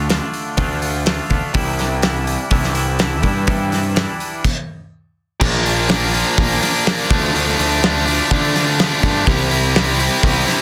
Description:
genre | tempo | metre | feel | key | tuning
quiet-loud alternative rock | 124 BPM | 4/4 | straight | unclear | A4 = 439 Hz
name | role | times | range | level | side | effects
twangy electric guitar | arpeggios | 0.0-4.4 s | C3 to F4 | -25 LUFS | equal | analog chorus
fuzz picked electric bass | bass | 0.0-10.4 s | Bb1 to D3 | -23 LUFS | equal | overdrive
loose indie drum kit | drums | 0.1-10.6 s | crash cymbal, hi-hat, kick drum, snare drum | -21 LUFS | equal | none
overdriven electric guitar | riff | 5.4-10.6 s | Bb2 to E4 | -19 LUFS | equal | none
room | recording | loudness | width
light reverb | dense, heavily limited modern master | -17 LUFS | mono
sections
0.0-5.4 A section; 5.4-10.6 B section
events
stop 4.4-5.4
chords
0.0 Dm; 1.6 Cadd9; 5.4 Bb; 7.1 Dm; 9.3 C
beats
0.10 0.59 1.07 | 1.55 2.04 2.52 3.00 | 3.48 3.97 4.45 4.93 | 5.41 5.90 6.38 6.86 | 7.34 7.82 8.31 8.79 | 9.27 9.75 10.23

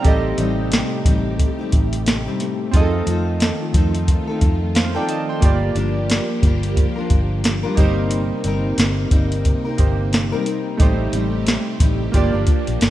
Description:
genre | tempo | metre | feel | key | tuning
indie pop, bedroom pop | 89 BPM | 4/4 | swing 60% on 16ths | unclear | A4 = 440 Hz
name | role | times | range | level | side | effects
chorused retro synth keys | accompaniment | 0.0-12.9 s | A3 to C6 | -26 LUFS | right 5 dB | none
picked steel-string acoustic guitar | accompaniment | 0.0-12.9 s | G2 to Bb4 | -25 LUFS | left 3 dB | lush chorus, vibrato effect
string machine, violas | sustained chords | 0.0-12.9 s | C3 to G4 | -27 LUFS | equal | phaser, ensemble chorus
vintage muted fingered electric bass | bass | 0.0-12.9 s | G1 to F2 | -22 LUFS | equal | none
soft vintage rhythm box | drums | 0.0-12.9 s | hi-hat, kick drum, snare drum | -17 LUFS | equal | none
room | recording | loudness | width
light reverb, digital ambience | rough home demo mix | -16 LUFS | side -14 dB against mid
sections
0.0-12.9 A section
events
none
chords
0.0 Am7b5; 2.7 F7; 5.4 Gm7; 7.8 Cm7/G; 10.8 Am7b5; 12.1 Gm7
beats
| 0.05 0.72 1.39 2.06 | 2.73 3.41 4.08 4.75 | 5.42 6.09 6.77 7.44 | 8.11 8.78 9.45 10.12 | 10.80 11.47 12.14 12.81

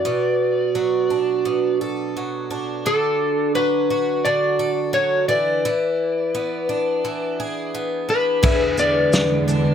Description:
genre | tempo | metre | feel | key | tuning
acoustic pop | 86 BPM | 4/4 | straight | unclear | A4 = 440 Hz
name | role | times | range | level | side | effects
electric slide guitar | melody | 0.0-9.7 s | A4 to D5 | -22 LUFS | left 2 dB | none
picked twelve-string acoustic guitar | accompaniment | 0.0-9.7 s | B2 to A4 | -21 LUFS | right 2 dB | none
overdriven reed electric piano | accompaniment | 8.4-9.7 s | D4 to E5 | -29 LUFS | left 5 dB | phaser
warm studio string section | sustained chords | 8.4-9.7 s | E2 to G#3 | -21 LUFS | right 2 dB | none
loose indie drum kit | drums | 8.4-9.6 s | crash cymbal, kick drum, shaker, snare drum | -20 LUFS | equal | none
room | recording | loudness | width
light reverb | none | -18 LUFS | side -8 dB against mid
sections
0.0-8.4 A section; 8.4-9.7 B section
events
none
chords
0.1 Bm7; 2.9 D6; 5.3 E7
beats
| 0.06 0.76 1.45 2.15 | 2.85 3.55 4.25 4.95 | 5.65 6.35 7.04 7.74 | 8.44 9.14

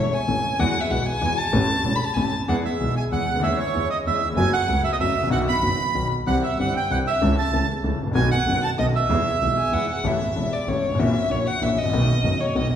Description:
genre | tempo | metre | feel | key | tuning
tango | 191 BPM | 3/4 | rubato | E major | A4 = 442 Hz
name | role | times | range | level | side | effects
warm violin | second line | 0.0-12.8 s | C#5 to B5 | -26 LUFS | left 2 dB | none
warm concert grand piano | accompaniment | 0.0-12.7 s | E1 to A4 | -24 LUFS | left 2 dB | none
clear double bass | bass | 0.0-12.8 s | E1 to E2 | -27 LUFS | right 2 dB | none
bandoneon | melody | 2.5-9.9 s | C#5 to B5 | -24 LUFS | right 6 dB | none
room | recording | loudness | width
wet recital hall reverb, RT60 1.7 s | recorded in a church or concert hall | -20 LUFS | side -9 dB against mid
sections
0.0-2.5 A section; 2.5-10.1 B section; 10.1-12.8 A section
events
violin solo 0.0-2.5, 10.1-12.8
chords
0.0 A; 0.6 Eadd9; 1.5 A; 2.5 E; 3.4 C#m/E; 4.4 F#m; 5.3 B; 6.3 C; 7.2 A/C#; 8.1 B7; 9.1 E; 10.1 Aadd9; 11.0 F#7/A#; 11.9 B7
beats
0.29 | 0.60 0.91 1.22 | 1.53 1.85 2.17 | 2.49 2.81 3.12 | 3.44 3.75 4.06 | 4.38 4.69 5.00 | 5.32 5.63 5.95 | 6.27 6.59 6.90 | 7.22 7.53 7.84 | 8.15 8.46 8.78 | 9.10 9.41 9.73 | 10.05 10.37 10.68 | 11.00 11.31 11.62 | 11.93 12.24 12.56

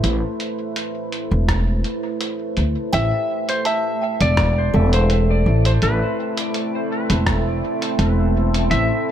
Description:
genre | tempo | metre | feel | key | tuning
ambient dub | 83 BPM | 4/4 | swing 53% on 16ths | A minor | A4 = 442 Hz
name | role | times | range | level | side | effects
deep dark ambient pad | sustained chords | 0.0-9.1 s | A3 to C5 | -25 LUFS | right 1 dB | chorus, built-in reverb
upright bass | bass | 0.0-8.9 s | E1 to D2 | -18 LUFS | equal | none
lo-fi sampler-style drum kit | drums | 0.0-8.9 s | hi-hat, rim click | -27 LUFS | equal | dub echo
electronic kick drum | drums | 1.5-7.4 s | none | -24 LUFS | equal | none
clean lap steel guitar | melody | 2.9-9.1 s | B4 to E5 | -23 LUFS | left 1 dB | dub echo
kalimba | arpeggios | 2.9-6.5 s | A4 to A5 | -29 LUFS | right 1 dB | dub echo
room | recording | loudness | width
light reverb, digital ambience | none | -17 LUFS | side -10 dB against mid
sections
0.0-2.9 A section; 2.9-9.1 B section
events
none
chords
0.0 Amadd9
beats
| 0.04 0.76 1.49 2.21 | 2.93 3.65 4.38 5.10 | 5.82 6.55 7.27 7.99 | 8.71

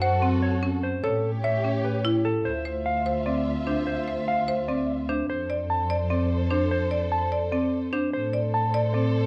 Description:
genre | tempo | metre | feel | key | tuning
classical, minimalist pattern music | 296 BPM (eighths) | 7/8 | straight | D minor | A4 = 442 Hz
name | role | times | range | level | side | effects
mellow electric guitar | melody | 0.0-9.2 s | A4 to A5 | -31 LUFS | equal | none
warm studio string section | sustained chords | 0.0-9.3 s | F4 to E5 | -36 LUFS | equal | none
marimba with hard mallets | arpeggios | 0.0-9.2 s | C4 to D5 | -30 LUFS | equal | none
rich studio double bass section | bass | 0.0-9.3 s | D2 to A2 | -31 LUFS | equal | none
room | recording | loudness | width
light reverb | worn, warbling old tape, cassette tape, warbly pitch drift | -26 LUFS | mono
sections
0.0-2.5 A section; 2.5-9.3 B section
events
none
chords
0.0 F#m; 1.0 A7; 2.5 Dmadd9; 5.3 F; 8.1 Am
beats
0.02 0.22 0.43 0.63 0.83 | 1.03 1.24 1.44 1.64 1.84 2.05 2.25 | 2.45 2.66 2.86 3.06 3.26 3.47 3.67 | 3.87 4.08 4.28 4.48 4.68 4.89 5.09 | 5.29 5.49 5.70 5.90 6.10 6.30 6.51 | 6.71 6.91 7.12 7.32 7.52 7.72 7.93 | 8.13 8.33 8.53 8.74 8.94 9.14

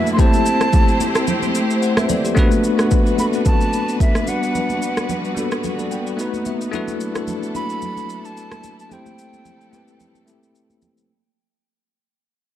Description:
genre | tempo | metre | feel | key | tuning
amapiano | 110 BPM | 4/4 | swing 55% on 16ths | A dorian | A4 = 439 Hz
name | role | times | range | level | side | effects
bright concert flute | melody | 0.0-10.6 s | E5 to C6 | -25 LUFS | right 2 dB | digital delay
bell-like tine electric piano | accompaniment | 0.0-11.1 s | G3 to G5 | -21 LUFS | left 3 dB | medium stereo tremolo
clear studio string section | sustained chords | 0.0-11.1 s | F#3 to C5 | -26 LUFS | equal | sidechain pumping
afro-pop drum kit | drums | 0.1-11.1 s | kick drum, rim click, shaker | -18 LUFS | equal | overdrive
congas | percussion | 0.2-11.0 s | none | -27 LUFS | right 4 dB | none
room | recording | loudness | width
light reverb, small room ambience | dark, warm production | -16 LUFS | side -12 dB against mid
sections
0.0-2.4 A section; 2.4-11.1 B section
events
break 1.3-2.4; fade-out 2.4-11.1; tine electric piano fill 5.6-6.7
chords
0.2 Am7; 2.4 Bm7; 4.3 Gmaj7; 6.2 B7; 6.7 E9sus4; 8.9 Am7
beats
| 0.18 0.73 1.28 1.82 | 2.37 2.91 3.46 4.00 | 4.55 5.09 5.64 6.18 | 6.73 7.28 7.82 8.37 | 8.91 9.46 10.00 10.55

